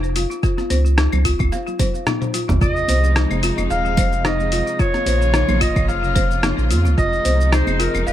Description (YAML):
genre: organic downtempo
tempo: 110 BPM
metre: 4/4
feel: swing 55% on 16ths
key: F minor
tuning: A4 = 440 Hz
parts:
  - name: folk marimba with hard mallets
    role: arpeggios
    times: 0.0-8.1 s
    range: Eb4 to F5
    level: -24 LUFS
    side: left 3 dB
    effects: dub echo
  - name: warm sub bass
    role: bass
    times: 0.0-8.1 s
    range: Eb1 to F2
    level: -19 LUFS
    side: equal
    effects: tube saturation, sidechain pumping
  - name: dusty soul sampler-style drum kit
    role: drums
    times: 0.0-8.1 s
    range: claves, hi-hat, rim click, shaker, toms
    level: -25 LUFS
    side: equal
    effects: tape echo
  - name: electronic kick drum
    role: drums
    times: 0.4-7.1 s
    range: none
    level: -20 LUFS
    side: equal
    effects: none
  - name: congas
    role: percussion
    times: 0.6-8.0 s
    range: none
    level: -29 LUFS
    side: right 4 dB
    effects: tape echo
  - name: clear clarinet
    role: melody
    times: 2.6-8.1 s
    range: Bb4 to F5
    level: -22 LUFS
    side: equal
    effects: dub echo
  - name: rich symphonic string section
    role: sustained chords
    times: 2.6-8.1 s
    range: C3 to F4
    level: -26 LUFS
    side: equal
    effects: sidechain pumping
room: light reverb, small room ambience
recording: echo-heavy mix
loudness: -16 LUFS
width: side -12 dB against mid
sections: 0.0-8.1 A section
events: drum fill 2.1-2.6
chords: 0.4 Db; 2.6 Fm7; 4.8 Bbm; 7.0 Fm7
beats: | 0.43 0.98 1.52 2.07 | 2.61 3.16 3.71 4.25 | 4.80 5.34 5.89 6.43 | 6.98 7.52 8.07